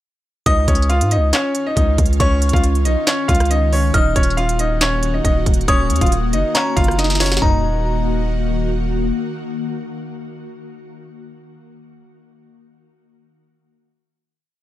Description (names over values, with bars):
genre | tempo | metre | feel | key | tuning
hip hop, trap | 138 BPM | 4/4 | half-time | Eb minor | A4 = 439 Hz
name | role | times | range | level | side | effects
bright baby grand piano | melody | 0.5-8.7 s | Db4 to F5 | -20 LUFS | equal | none
delicate synth tine bell | second line | 0.5-8.7 s | Bb5 to F6 | -24 LUFS | left 3 dB | chorus, digital delay
ethereal airy pad | sustained chords | 1.3-10.6 s | Eb3 to Gb4 | -26 LUFS | left 2 dB | ensemble chorus, built-in reverb
long sustained 808-style bass | bass | 0.5-9.1 s | Eb1 to Ab2 | -18 LUFS | equal | none
trap drum kit | drums | 0.5-7.5 s | handclaps, hi-hat, kick drum, rim click, snare drum, toms | -18 LUFS | equal | none
room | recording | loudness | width
little or no reverb | none | -15 LUFS | side -14 dB against mid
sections
0.5-7.4 hook; 7.4-10.9 final chord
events
drum fill 7.0-7.4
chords
0.5 Dbadd9; 3.9 Ebm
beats
| 0.46 0.90 1.33 1.77 | 2.20 2.64 3.07 3.51 | 3.94 4.38 4.81 5.25 | 5.68 6.12 6.55 6.99 | 7.42 7.85 8.29 8.72 | 9.16 9.59 10.03 10.46